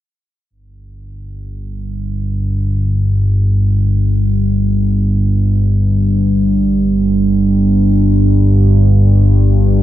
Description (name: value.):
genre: ambient.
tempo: free time.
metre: none.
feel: none.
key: unclear.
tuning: A4 = 441 Hz.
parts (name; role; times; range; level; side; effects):
analog drone; solo; 1.2-9.8 s; G1 to G2; -11 LUFS; equal; chorus, tape echo.
room: moderate huge ambient reverb, RT60 8.2 s.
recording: dark, warm production.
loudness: -11 LUFS.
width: side -13 dB against mid.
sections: 0.5-9.8 A section.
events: none.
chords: none.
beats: free time.